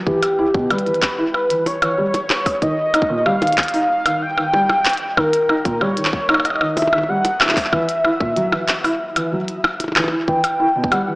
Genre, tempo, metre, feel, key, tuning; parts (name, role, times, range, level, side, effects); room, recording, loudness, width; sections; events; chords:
IDM; 94 BPM; 4/4; straight; A4 = 442 Hz
warm velvety synth lead; melody; 0.1-11.2 s; G4 to G5; -19 LUFS; equal; chorus, shimmer reverb, tape echo
felt-muted upright piano; arpeggios; 0.1-11.2 s; A#2 to E4; -22 LUFS; equal; shimmer reverb, tape echo
electronic kick drum; drums; 0.1-11.0 s; -24 LUFS; equal
glitchy drum kit; drums; 0.2-11.0 s; handclaps, hi-hat, percussion blips; -19 LUFS; equal
moderate echo chamber reverb, RT60 1.9 s, digital ambience; small speaker sound; -15 LUFS; side -23 dB against mid
0.0-11.2 A section
0.1 Em6; 2.6 D#; 7.7 F#7(no3); 10.3 Em